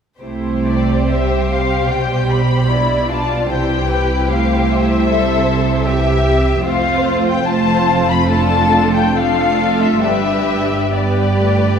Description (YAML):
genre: classical, slow romantic movement for string orchestra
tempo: 64-78 BPM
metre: 4/4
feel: rubato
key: C major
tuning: A4 = 440 Hz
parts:
  - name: muted symphonic violin section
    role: second line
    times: 0.2-11.8 s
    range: E4 to E5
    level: -20 LUFS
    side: left 1 dB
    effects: none
  - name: muted symphonic viola section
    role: accompaniment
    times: 0.2-11.8 s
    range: E3 to G4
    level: -20 LUFS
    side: right 3 dB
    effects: none
  - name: muted symphonic cello section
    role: bass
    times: 0.2-11.8 s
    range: F2 to C3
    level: -21 LUFS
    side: right 2 dB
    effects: none
  - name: muted symphonic double bass section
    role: bass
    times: 0.2-11.8 s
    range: F1 to C2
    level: -20 LUFS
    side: right 2 dB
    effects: none
  - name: muted symphonic violin section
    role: melody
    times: 0.7-11.8 s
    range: D5 to B5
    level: -19 LUFS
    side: left 5 dB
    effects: none
room: wet scoring stage reverb, RT60 1.8 s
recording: heard from further back in the room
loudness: -13 LUFS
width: side -7 dB against mid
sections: 0.2-11.8 A section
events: none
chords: 0.2 C; 1.9 G7/B; 3.5 C; 6.7 F; 8.3 Dm/F; 10.0 G